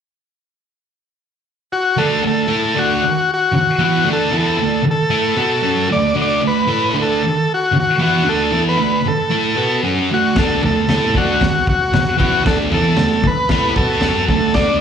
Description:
garage rock duo or trio; 115 BPM; 4/4; straight; D major; A4 = 441 Hz
overdriven combo organ; melody; 1.7-14.8 s; F#4 to D5; -17 LUFS; left 2 dB; slapback echo, tape echo
thick fuzz guitar; riff; 2.0-14.8 s; D3 to B4; -17 LUFS; right 2 dB; distortion, slapback echo
crunchy breakbeat drum kit; drums; 10.4-14.7 s; kick drum, snare drum, toms; -18 LUFS; equal
little or no reverb; live gig heard through the venue's PA, club reverb; -14 LUFS; side -7 dB against mid
0.0-2.0 A section; 2.0-14.8 B section
0.0 N.C.; 2.0 D

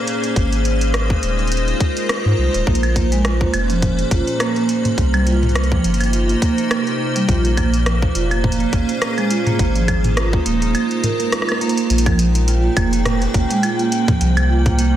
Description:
IDM; 104 BPM; 4/4; swing 56% on 16ths; Bb dorian; A4 = 437 Hz
icy glass pad; sustained chords; 0.0-15.0 s; Bb2 to C5; -22 LUFS; left 1 dB; chorus, built-in reverb
booming analog drum machine; drums; 0.1-14.9 s; claves, hi-hat, rim click, toms; -23 LUFS; equal; soft clipping on snare
warm sub bass; bass; 0.4-15.0 s; Eb1 to Ab2; -18 LUFS; equal
electronic kick drum; drums; 0.4-14.8 s; -19 LUFS; equal; overdrive
vibraphone with soft mallets; arpeggios; 2.7-14.9 s; F3 to Bb4; -20 LUFS; right 4 dB; vintage 12-bit sampler grit, digital delay
bubbling stepped-filter texture; texture; 12.5-15.0 s; G5; -28 LUFS; left 1 dB; chorus, built-in reverb
moderate echo chamber reverb, RT60 1.9 s, digital ambience; dense, heavily limited modern master; -15 LUFS; side -11 dB against mid
0.0-11.9 A section; 11.9-15.0 B section
drum fill 11.6
0.4 Ab69; 2.7 Bbm9; 5.0 Cm7; 7.3 Bbm9; 9.6 Ab69; 11.9 Bbm9; 14.2 C7(no3)

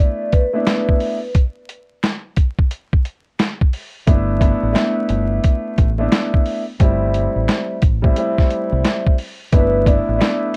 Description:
hip hop, boom-bap hip-hop; 88 BPM; 4/4; swing 63% on 16ths; G major; A4 = 439 Hz
vibraphone with soft mallets; melody; 0.0-1.3, 9.5-10.6 s; B4 to D5; -23 LUFS; equal; high-pass filter, low-pass filter, analog delay
dark baby grand piano; accompaniment; 0.0-10.6 s; G3 to E4; -23 LUFS; equal; cassette tape, high-pass filter, low-pass filter
boom bap sampler-style drum kit; drums; 0.3-10.6 s; hi-hat, kick drum, snare drum; -18 LUFS; equal
finger snaps; percussion; 0.7-10.4 s; -36 LUFS; equal
deep dub fingered electric bass; bass; 4.1-10.2 s; G1 to C2; -22 LUFS; equal
light reverb; worn, warbling old tape, cassette tape, vinyl crackle, warbly pitch drift; -18 LUFS; mono
0.0-10.6 A section
break 0.0-4.1
0.0 Asus24; 1.3 N.C.; 4.1 G6; 6.8 Am7/G; 9.5 G6

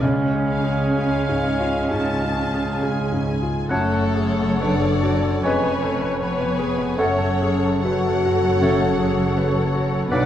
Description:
classical, romantic movement for piano and orchestra; 62-82 BPM; 4/4; rubato; F# minor; A4 = 441 Hz
clear baby grand piano; melody; 0.0-10.3 s; B1 to C#5; -24 LUFS; left 1 dB
mellow silver concert flute; second line; 0.0-10.3 s; F#5 to A5; -31 LUFS; equal
warm clarinet; second line; 0.0-10.3 s; A4 to C#5; -30 LUFS; equal
warm oboe; second line; 0.0-10.3 s; C#5 to F#5; -31 LUFS; right 3 dB
warm bassoon; accompaniment; 0.0-10.3 s; F#3 to A3; -31 LUFS; right 1 dB
dark studio cello section; bass; 0.0-10.3 s; E#2 to C#4; -27 LUFS; right 2 dB
warm symphonic double bass section; bass; 0.0-10.3 s; E#1 to C#2; -26 LUFS; right 2 dB
warm symphonic violin section; melody; 0.5-10.3 s; F#5 to G#5; -35 LUFS; left 3 dB
warm symphonic violin section; second line; 0.5-10.3 s; A4 to A5; -31 LUFS; left 4 dB
dark symphonic viola section; accompaniment; 0.5-10.3 s; G#4 to D5; -29 LUFS; right 1 dB
mellow French horn section; sustained chords; 3.7-10.3 s; A3 to F#4; -24 LUFS; left 4 dB
wet scoring stage reverb, RT60 1.7 s; dark, warm production; -18 LUFS; side -10 dB against mid
0.0-3.7 A section; 3.7-10.3 B section
0.0 C#; 3.7 F#m; 5.4 C#7/E#; 7.0 F#m

